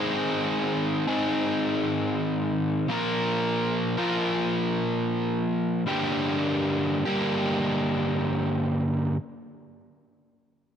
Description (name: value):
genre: rock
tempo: 66-83 BPM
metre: 4/4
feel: straight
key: unclear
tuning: A4 = 440 Hz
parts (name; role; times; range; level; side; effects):
- overdriven electric guitar; solo; 0.0-9.2 s; G2 to Bb4; -24 LUFS; equal; none
room: moderate plate reverb, RT60 2.6 s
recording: none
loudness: -24 LUFS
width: side -8 dB against mid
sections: 0.0-9.2 A section; 9.2-10.8 B section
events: slowing down 2.9-9.2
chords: 0.0 Ab; 2.9 Bb5; 5.9 Gm; 9.2 N.C.